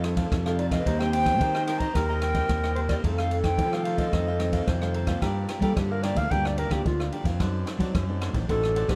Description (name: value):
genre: samba and choro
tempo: 110 BPM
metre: 4/4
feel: straight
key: G minor from 5.2 s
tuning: A4 = 440 Hz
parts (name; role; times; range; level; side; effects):
- mellow silver concert flute; melody; 0.0-4.9 s; C5 to Bb5; -31 LUFS; equal; none
- mellow clarinet; second line; 0.0-9.0 s; F4 to G5; -33 LUFS; equal; none
- cavaquinho; accompaniment; 0.0-9.0 s; Eb4 to F5; -39 LUFS; equal; none
- nylon-string guitar; accompaniment; 0.0-9.0 s; F2 to A4; -36 LUFS; equal; none
- fuzz fingered electric bass; bass; 0.0-9.0 s; A1 to G3; -30 LUFS; equal; overdrive
- open jazz drum kit; drums; 0.0-9.0 s; kick drum, ride cymbal, rim click; -32 LUFS; equal; none
room: light reverb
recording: dark, warm production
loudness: -26 LUFS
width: mono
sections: 0.0-5.2 A section; 5.2-9.0 B section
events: clarinet solo 5.2-9.0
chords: 0.0 F7; 0.9 Cm7/Eb; 3.0 F7; 5.2 Gm7; 7.4 D7b9